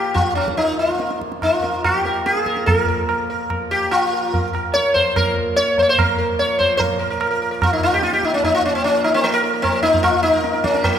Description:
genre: indian classical, Hindustani.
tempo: 146 BPM.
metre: 5/4.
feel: straight.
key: Bb raga kafi.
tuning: A4 = 441 Hz.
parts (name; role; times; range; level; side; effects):
sitar; melody; 0.0-11.0 s; Bb3 to Db5; -17 LUFS; equal; none.
hand-pumped harmonium; drone; 0.0-11.0 s; Bb2 to F3; -29 LUFS; left 2 dB; none.
tabla; percussion; 0.2-11.0 s; none; -23 LUFS; right 1 dB; none.
room: wet concert hall reverb, RT60 1.9 s.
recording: recorded in a church or concert hall.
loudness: -16 LUFS.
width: side -8 dB against mid.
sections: 0.0-6.8 A section; 6.8-11.0 B section.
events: speeding up 0.0-11.0.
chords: none.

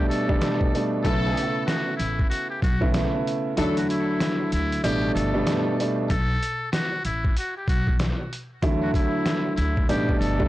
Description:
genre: hip hop, boom-bap hip-hop.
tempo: 95 BPM.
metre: 4/4.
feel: swing 63% on 16ths.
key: unclear.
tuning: A4 = 441 Hz.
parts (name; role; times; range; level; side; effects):
trumpet with metal mute; melody; 0.0-10.5 s; E4 to A4; -30 LUFS; left 1 dB; high-pass filter, low-pass filter, digital delay.
warm upright piano; accompaniment; 0.0-10.5 s; B2 to E4; -24 LUFS; right 1 dB; cassette tape, high-pass filter, low-pass filter.
trip hop sampler-style drum kit; drums; 0.1-10.5 s; hi-hat, kick drum, snare drum; -25 LUFS; equal; vintage 12-bit sampler grit.
warm horn section; stabs; 1.0-3.8 s; F#3 to A4; -33 LUFS; left 4 dB; high-pass filter, low-pass filter, digital delay.
upright bass; bass; 1.0-10.5 s; G1 to E2; -28 LUFS; equal; tube saturation.
room: light reverb.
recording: blown-out, overdriven recording, vinyl crackle, overdrive.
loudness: -21 LUFS.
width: side -16 dB against mid.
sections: 0.0-6.1 A section; 6.1-10.5 A section.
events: break 0.0-1.0; kick muted 3.6-6.1.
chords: 0.0 A9sus4; 1.0 B9sus4; 3.6 E9sus4; 4.8 A9sus4; 6.1 Gmaj9 (rootless); 8.6 E9sus4; 9.9 A9sus4.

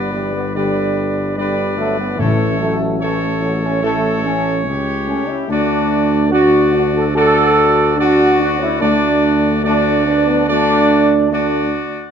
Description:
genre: classical.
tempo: 72 BPM.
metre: 4/4.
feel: straight.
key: D major.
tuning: A4 = 441 Hz.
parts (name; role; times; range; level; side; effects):
clear trumpet section; melody; 0.0-12.1 s; F#4 to D5; -21 LUFS; left 1 dB; none.
dark French horn section; sustained chords; 0.0-11.7 s; D3 to F#4; -22 LUFS; left 5 dB; none.
dark trombone section; sustained chords; 0.0-11.7 s; G3 to A4; -16 LUFS; right 2 dB; none.
mellow tuba; bass; 0.0-11.8 s; G1 to D2; -21 LUFS; right 3 dB; none.
timpani; percussion; 2.2-3.4 s; A2; -22 LUFS; left 2 dB; none.
room: wet recital hall reverb, RT60 1.4 s.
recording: none.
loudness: -13 LUFS.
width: side -7 dB against mid.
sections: 0.0-12.1 A section.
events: none.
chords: 0.0 G; 2.2 A; 5.5 D.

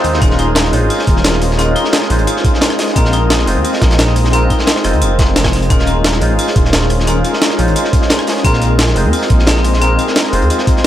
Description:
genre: liquid drum and bass.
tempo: 175 BPM.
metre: 4/4.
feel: straight.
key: unclear.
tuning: A4 = 440 Hz.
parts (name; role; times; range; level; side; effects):
barky tine electric piano; accompaniment; 0.0-10.9 s; Ab3 to C5; -17 LUFS; equal; phaser, digital delay.
lush unison pad; sustained chords; 0.0-10.9 s; C4 to Eb5; -24 LUFS; equal; chorus, sidechain pumping.
vibraphone with hard mallets; arpeggios; 0.0-10.9 s; C4 to F4; -21 LUFS; left 4 dB; dub echo.
dark detuned saw bass; bass; 0.0-10.5 s; Eb1 to Eb2; -15 LUFS; equal; none.
breakbeat sampler-style drum kit; drums; 0.0-10.9 s; hi-hat, rim click, snare drum; -18 LUFS; equal; none.
crunchy breakbeat drum kit; drums; 0.0-10.9 s; hi-hat, snare drum; -21 LUFS; equal; high-pass filter on hats, high-pass filter on snare, high-pass filter on room.
electronic kick drum; drums; 0.2-10.7 s; none; -13 LUFS; equal; none.
room: little or no reverb.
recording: none.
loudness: -10 LUFS.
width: side -12 dB against mid.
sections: 0.0-10.9 A section.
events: none.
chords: 0.2 Eb9sus4; 3.0 Bb9sus4; 5.7 Eb9sus4; 8.4 Bb9sus4.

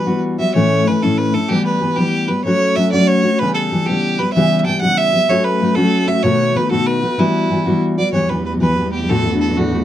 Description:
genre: celtic folk, Celtic jig.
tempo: 126 BPM (dotted quarters).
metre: 6/8.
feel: straight.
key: E dorian.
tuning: A4 = 439 Hz.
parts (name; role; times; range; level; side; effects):
rich fiddle; melody; 0.0-9.8 s; E4 to A5; -18 LUFS; right 2 dB; none.
fingerpicked steel-string acoustic guitar; accompaniment; 0.0-9.8 s; D2 to G4; -16 LUFS; left 2 dB; none.
warm cello; drone; 8.1-9.8 s; E2; -22 LUFS; right 2 dB; none.
room: moderate studio reverb, RT60 0.5 s.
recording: dark, warm production.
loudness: -14 LUFS.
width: side -12 dB against mid.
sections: 0.6-8.1 A section; 8.1-9.8 B section.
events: none.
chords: 0.0 Emadd9; 0.6 A; 1.5 Em; 2.5 F#m; 3.4 C#m7b5; 5.3 F#m; 6.2 B7; 7.2 Emadd9; 8.1 Em; 9.1 D.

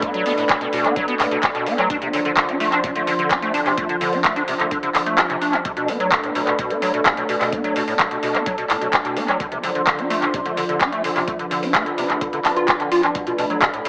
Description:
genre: acid house.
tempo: 128 BPM.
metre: 4/4.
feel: straight.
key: B phrygian.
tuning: A4 = 441 Hz.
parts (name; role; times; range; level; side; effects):
lush unison pad; sustained chords; 0.0-13.9 s; F3 to C5; -24 LUFS; equal; chorus, sidechain pumping.
acid bass, square; riff; 0.0-13.9 s; A2 to F4; -22 LUFS; equal; overdrive, ensemble chorus, tape echo.
booming analog drum machine; drums; 0.0-13.9 s; handclaps, hi-hat; -21 LUFS; equal; tape echo.
electronic kick drum; drums; 0.0-13.7 s; none; -33 LUFS; equal; none.
room: wet spring reverb, RT60 1.6 s.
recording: echo-heavy mix, AM radio sound.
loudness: -17 LUFS.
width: side -32 dB against mid.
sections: 0.0-13.9 A section.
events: kick drops out 5.2-5.7.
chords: 0.0 Bm7; 1.9 Dm7; 5.7 Bm7; 9.4 Dm7; 13.2 Bm7.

